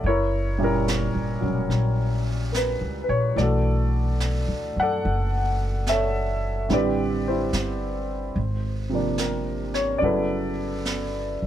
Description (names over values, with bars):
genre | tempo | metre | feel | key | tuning
jazz ballad | 72 BPM | 4/4 | swing 68% on 8ths | unclear | A4 = 443 Hz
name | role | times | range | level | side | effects
warm upright piano | accompaniment | 0.0-11.5 s | A#2 to F#5 | -24 LUFS | equal | none
upright bass | bass | 0.0-11.5 s | E1 to F#2 | -26 LUFS | equal | none
jazz brush drum kit | drums | 0.0-11.5 s | brushed snare drum, hi-hat, snare drum | -34 LUFS | right 3 dB | none
room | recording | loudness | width
little or no reverb | close, detailed microphones | -22 LUFS | side -11 dB against mid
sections
0.0-11.5 A section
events
none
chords
0.0 F#7b9; 3.4 Bm9; 6.7 Am9; 8.4 G#add9; 10.0 G69